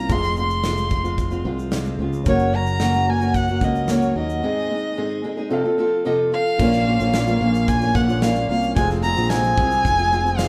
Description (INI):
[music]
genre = acoustic pop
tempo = 111 BPM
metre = 4/4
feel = straight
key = Bb minor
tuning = A4 = 440 Hz
[part]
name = dark violin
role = melody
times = 0.0-10.5 s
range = Db5 to C6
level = -26 LUFS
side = equal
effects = none
[part]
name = fingerpicked acoustic archtop guitar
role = accompaniment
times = 0.0-10.5 s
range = F2 to A4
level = -25 LUFS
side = equal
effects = none
[part]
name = warm concert grand piano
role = accompaniment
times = 0.0-10.5 s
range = C4 to Gb5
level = -34 LUFS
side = equal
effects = none
[part]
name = fretless electric bass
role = bass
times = 0.0-10.5 s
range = F1 to Eb2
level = -25 LUFS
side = equal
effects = none
[part]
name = modern studio drum kit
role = drums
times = 0.1-10.5 s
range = crash cymbal, kick drum, shaker, snare drum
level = -28 LUFS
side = equal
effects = none
[part]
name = hand-pumped harmonium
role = sustained chords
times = 6.6-10.5 s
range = F3 to Ab4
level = -33 LUFS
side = equal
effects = none
[sound]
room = wet studio reverb, RT60 0.9 s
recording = heard from further back in the room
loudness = -20 LUFS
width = mono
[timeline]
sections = 0.0-6.6 A section; 6.6-10.5 B section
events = break 4.4-6.6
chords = 0.1 Fm; 2.3 Gb; 4.4 Ab; 5.5 F; 6.6 Bbm; 8.8 Fm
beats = | 0.10 0.64 1.18 1.72 | 2.26 2.80 3.35 3.89 | 4.43 4.97 5.51 6.05 | 6.59 7.14 7.68 8.22 | 8.76 9.30 9.85 10.39